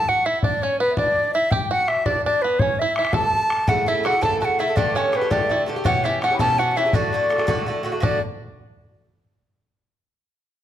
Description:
celtic folk, Celtic jig; 111 BPM (dotted quarters); 6/8; straight; D major; A4 = 440 Hz
bright wooden flute; melody; 0.0-8.2 s; B4 to A5; -21 LUFS; equal
bluegrass banjo; second line; 0.0-8.2 s; B3 to A4; -28 LUFS; right 5 dB
mellow hollow baroque flute; second line; 0.0-8.2 s; B4 to B5; -29 LUFS; left 6 dB
bodhran; percussion; 0.1-8.2 s; -25 LUFS; left 2 dB
Irish bouzouki; accompaniment; 3.7-8.2 s; G2 to A4; -24 LUFS; right 2 dB
moderate recital hall reverb, RT60 1.3 s; close, detailed microphones; -18 LUFS; side -11 dB against mid
0.0-8.0 A section; 8.0-9.1 B section
0.0 N.C.; 2.6 A; 4.8 Gsus2; 5.9 C#m7b5; 6.9 D

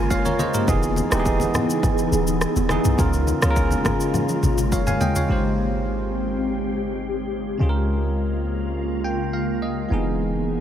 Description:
afrobeats; 104 BPM; 4/4; straight; A4 = 441 Hz
bell-like tine electric piano; accompaniment; 0.0-10.6 s; Db3 to Ab5; -25 LUFS; right 2 dB; wide subtle chorus
glassy FM pad; sustained chords; 0.0-10.6 s; Db3 to G#4; -25 LUFS; left 1 dB; ensemble chorus, built-in reverb, phaser
clean 808-style bass; bass; 0.0-10.6 s; D#1 to Db2; -24 LUFS; equal
afro-pop drum kit; drums; 0.1-5.3 s; kick drum, rim click, shaker, toms; -25 LUFS; equal
congas; percussion; 0.3-5.1 s; -30 LUFS; left 2 dB
moderate huge ambient reverb, RT60 8.6 s; dreamy mix soaked in reverb; -19 LUFS; side -10 dB against mid
0.0-5.3 A section; 5.3-10.6 B section
tine electric piano fill 0.0-0.7, 8.8-9.9; drum fill 4.1-5.3
0.0 Db6; 0.7 Emaj7; 3.0 Db6; 5.3 Abmaj7; 7.6 Db6; 9.9 Emaj7

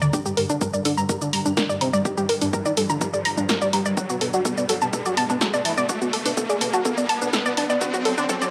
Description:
melodic techno; 125 BPM; 4/4; straight; A4 = 440 Hz
fat analog lead; melody; 0.0-8.5 s; D3 to Ab4; -28 LUFS; equal; phaser, analog chorus, sidechain pumping, analog delay
analog pluck; arpeggios; 0.0-8.5 s; D4 to Bb5; -26 LUFS; equal; chorus, cassette tape, sidechain pumping, analog delay
bowed-like drone; drone; 0.0-8.5 s; G2 to D3; -41 LUFS; equal
punchy analog drum machine; drums; 0.0-8.5 s; hi-hat, shaker, snare drum; -29 LUFS; equal
riser; sound effects; 0.8-8.5 s; -34 LUFS; equal
electronic kick drum; drums; 0.1-8.4 s; -30 LUFS; equal; overdrive, high-pass filter on kick
moderate lush hall reverb, RT60 1.9 s, digital ambience; dry, gritty hardware recording, cassette tape, high-pass filter; -22 LUFS; mono
0.0-8.5 A section
build-up 0.0-8.5; filter sweep on analog synth lead 0.0-8.5; riser 0.8-8.5
0.0 Gm; 4.0 Bm

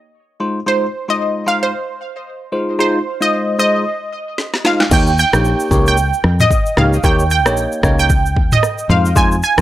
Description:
afrobeats; 113 BPM; 4/4; swing 58% on 16ths; A4 = 440 Hz
bell-like tine electric piano; accompaniment; 0.4-9.6 s; Ab3 to Db5; -18 LUFS; left 1 dB; phaser
analog pluck; melody; 0.7-9.6 s; C5 to Ab5; -17 LUFS; right 2 dB; chorus, tape echo
afro-pop drum kit; drums; 4.4-9.6 s; crash cymbal, kick drum, rim click, shaker, snare drum, toms; -16 LUFS; equal
fingered electric bass; bass; 4.9-9.6 s; Bb1 to F2; -16 LUFS; equal
digital ambience; dry, gritty hardware recording, transformer saturation; -13 LUFS; side -14 dB against mid
0.0-4.9 A section; 4.9-9.6 B section
drum fill 4.4-4.9
0.4 Fm7; 4.9 Eb7; 8.9 Fm7

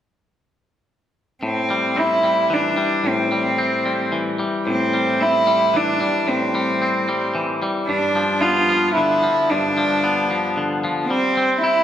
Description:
rock; 112 BPM; 3/4; straight; A minor; A4 = 440 Hz
rich cello; melody; 1.4-11.8 s; C4 to F4; -19 LUFS; right 1 dB
twangy electric guitar; arpeggios; 1.4-11.8 s; G2 to E4; -21 LUFS; left 2 dB; warbly pitch drift
wet recital hall reverb, RT60 1.4 s; recorded in a church or concert hall; -17 LUFS; side -10 dB against mid
1.4-11.8 A section
1.4 Am7; 7.9 G7; 11.1 C/G

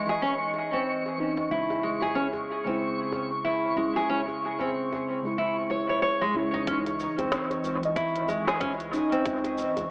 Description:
organic downtempo; 93 BPM; 4/4; swing 59% on 16ths; C# harmonic minor; A4 = 440 Hz
muted felt-like synth keys; accompaniment; 0.0-9.9 s; C#3 to D#5; -34 LUFS; equal; chorus, sidechain pumping, dub echo
warbly tape-like pad; sustained chords; 0.0-9.9 s; C#3 to C#6; -38 LUFS; equal; chorus, built-in reverb, sidechain pumping
nylon-string guitar; arpeggios; 0.0-9.7 s; G#3 to C#5; -30 LUFS; equal; vintage 12-bit sampler grit, dub echo
twinkling granular texture; texture; 0.0-6.7 s; C#6; -38 LUFS; equal; built-in reverb
djembe; percussion; 0.1-9.9 s; -43 LUFS; equal
round analog bass; bass; 6.7-9.9 s; G#1 to C#2; -44 LUFS; equal; sidechain pumping
electronic kick drum; drums; 6.7-9.4 s; -40 LUFS; equal; overdrive
organic electronic drum kit; drums; 6.7-9.9 s; hi-hat, shaker, snare drum; -36 LUFS; equal; overdrive, dub echo
wet spring reverb, RT60 2.3 s; echo-heavy mix, AM radio sound; -28 LUFS; mono
0.0-6.7 A section; 6.7-9.9 B section
0.0 C#madd9; 1.5 C#mmaj7

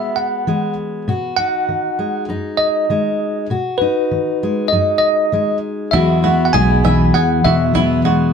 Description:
indie folk with a building arrangement; 99 BPM; 4/4; straight; E major; A4 = 441 Hz
bell-like tine electric piano; melody; 0.0-8.0 s; B4 to G#5; -17 LUFS; equal; fast stereo tremolo
fingerpicked steel-string acoustic guitar; accompaniment; 0.0-8.3 s; E2 to F#4; -19 LUFS; left 2 dB
picked steel-string acoustic guitar; accompaniment; 5.9-8.3 s; E2 to E4; -23 LUFS; left 4 dB
bluegrass banjo; arpeggios; 5.9-8.3 s; E4 to E5; -21 LUFS; right 7 dB
fingered electric bass; bass; 5.9-8.0 s; B1 to E2; -17 LUFS; right 1 dB
moderate studio reverb, RT60 0.7 s; band playing live in one room; -14 LUFS; side -6 dB against mid
0.0-5.9 A section; 5.9-8.3 B section
0.0 Eadd9; 1.1 B6; 5.9 Eadd9

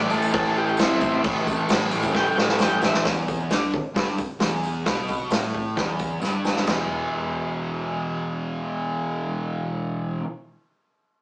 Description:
garage rock duo or trio; 132 BPM; 4/4; straight; E minor; A4 = 440 Hz
overdriven combo organ; melody; 0.0-3.1 s; C4 to G5; -24 LUFS; equal
fuzz guitar; riff; 0.0-10.2 s; E2 to A3; -25 LUFS; equal; distortion
hollow-body short-scale fingered electric bass; bass; 0.0-10.2 s; E1 to G2; -40 LUFS; equal; tube saturation
tambourine; percussion; 0.1-6.9 s; -44 LUFS; left 1 dB
vintage drum kit; drums; 0.3-6.8 s; crash cymbal, hi-hat, kick drum, snare drum, toms; -24 LUFS; equal
wet studio reverb, RT60 0.6 s; rough rehearsal-room recording, tube saturation, small speaker sound; -21 LUFS; side -25 dB against mid
0.0-3.0 A section; 3.0-6.7 B section; 6.7-10.3 C section
drum fill 2.1-3.0, 6.2-6.7
0.0 Am; 3.0 Em; 6.7 E5

